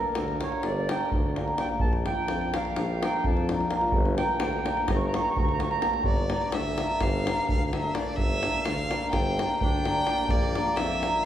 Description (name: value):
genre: balkan folk, Balkan wedding band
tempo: 254 BPM (eighths)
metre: 9/8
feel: straight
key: G dorian sharp4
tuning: A4 = 438 Hz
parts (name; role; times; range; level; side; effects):
- accordion; second line; 0.0-6.0, 9.6-11.3 s; Bb3 to C#6; -32 LUFS; right 3 dB; none
- cimbalom; accompaniment; 0.0-11.2 s; Bb3 to Bb4; -30 LUFS; left 1 dB; none
- warm tuba; bass; 0.2-11.1 s; G1 to F2; -31 LUFS; equal; none
- davul; percussion; 0.2-11.1 s; none; -29 LUFS; equal; none
- rich violin; melody; 6.1-11.3 s; D5 to G5; -30 LUFS; equal; none
room: wet church reverb, RT60 3.5 s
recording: recorded in a church or concert hall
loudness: -24 LUFS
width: side -11 dB against mid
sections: 0.0-6.0 A section; 6.0-11.3 B section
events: accordion solo 0.0-6.0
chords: 0.0 Gm; 1.8 Bb; 3.9 Gm; 10.3 Bb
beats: 0.15 0.38 0.62 0.85 1.09 1.33 1.56 | 1.80 2.04 2.27 2.51 2.75 2.98 3.22 3.45 3.69 | 3.92 4.16 4.40 4.63 4.87 5.11 5.34 5.58 5.81 | 6.05 6.29 6.52 6.76 6.99 7.23 7.46 7.70 7.93 | 8.17 8.41 8.64 8.88 9.11 9.35 9.58 9.82 10.05 | 10.29 10.52 10.76 10.99 11.22